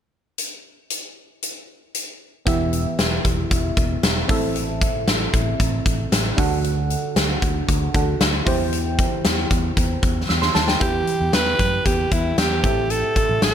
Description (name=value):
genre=1980s-style pop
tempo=115 BPM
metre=4/4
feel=straight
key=E minor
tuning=A4 = 440 Hz
part: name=huge arena drum kit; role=drums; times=0.4-13.5 s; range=hi-hat, kick drum, snare drum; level=-21 LUFS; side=left 1 dB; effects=gated reverb
part: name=FM electric piano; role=accompaniment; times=2.5-13.5 s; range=A2 to E6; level=-25 LUFS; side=right 2 dB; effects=chorus, phaser, shimmer reverb
part: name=fingered electric bass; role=bass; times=2.5-13.5 s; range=E1 to F#2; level=-24 LUFS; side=equal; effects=none
part: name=raspy alto saxophone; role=melody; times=10.8-13.5 s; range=E4 to B4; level=-21 LUFS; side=right 2 dB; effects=shimmer reverb
room=light reverb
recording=none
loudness=-18 LUFS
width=side -9 dB against mid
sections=0.4-2.5 A section; 2.5-10.8 B section; 10.8-13.5 C section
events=drum fill 10.3-10.8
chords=0.4 N.C.; 2.5 Em; 4.3 Am; 6.4 D; 8.5 C/E; 10.8 Em; 12.6 Am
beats=| 0.38 0.90 1.42 1.94 | 2.46 2.99 3.51 4.03 | 4.55 5.07 5.60 6.12 | 6.64 7.16 7.68 8.20 | 8.73 9.25 9.77 10.29 | 10.81 11.34 11.86 12.38 | 12.90 13.42